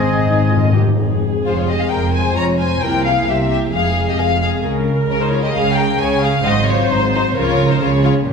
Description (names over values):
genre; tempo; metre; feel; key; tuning
quick classical-period movement for symphony orchestra; 132 BPM; 4/4; straight; F minor; A4 = 440 Hz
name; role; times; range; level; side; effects
rich studio violin section; melody; 0.0-8.1 s; Bb4 to Bb5; -20 LUFS; left 4 dB; none
flute section; second line; 0.0-0.7 s; Eb5; -24 LUFS; left 5 dB; none
mellow clarinet; second line; 0.0-0.7 s; C4; -29 LUFS; right 3 dB; none
warm oboe; second line; 0.0-0.8 s; Ab4; -23 LUFS; equal; none
warm studio violin section; second line; 0.0-8.1 s; Db4 to Db5; -24 LUFS; left 4 dB; none
dark studio viola section; accompaniment; 0.0-8.3 s; C4 to C5; -23 LUFS; right 1 dB; none
mellow French horn section; sustained chords; 0.0-8.3 s; Eb3 to E4; -24 LUFS; left 3 dB; none
dark studio double bass section; bass; 0.0-8.3 s; F1 to Db2; -21 LUFS; right 2 dB; none
warm studio cello section; bass; 0.0-8.3 s; F2 to Db3; -22 LUFS; right 3 dB; none
timpani; percussion; 0.0-0.9 s; Ab2; -17 LUFS; left 3 dB; none
room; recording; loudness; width
wet scoring stage reverb, RT60 1.6 s; minimal, uncompressed stereo recording; -14 LUFS; side -5 dB against mid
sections
1.0-8.3 A section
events
timpani fill 0.0-1.0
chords
0.0 Ab; 1.0 Fm; 2.8 C7; 3.7 Fm; 4.7 Db5; 6.5 Ab7; 7.4 Db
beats
0.05 0.52 | 0.98 1.45 1.91 2.36 | 2.81 3.28 3.73 4.19 | 4.65 5.11 5.56 6.01 | 6.46 6.91 7.37 7.82 | 8.26